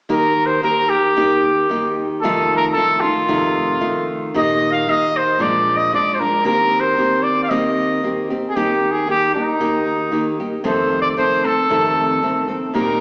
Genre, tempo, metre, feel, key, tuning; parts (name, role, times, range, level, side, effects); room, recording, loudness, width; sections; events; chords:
mexican folk, mariachi; 114 BPM; 2/4; straight; Eb major; A4 = 441 Hz
clear trumpet; melody; 0.1-13.0 s; Eb4 to F5; -20 LUFS; equal
nylon-string guitar; accompaniment; 0.1-13.0 s; F2 to A4; -22 LUFS; equal
bright studio violin section; sustained chords; 12.8-13.0 s; G3 to Bb4; -30 LUFS; equal
wet recital hall reverb, RT60 1.7 s; heard from further back in the room, small speaker sound; -18 LUFS; mono
0.1-8.6 A section; 8.6-13.0 A section
0.1 Eb; 2.2 F7; 4.3 Eb/Bb; 5.4 Bb7; 6.5 Eb6; 8.6 Eb; 10.7 F7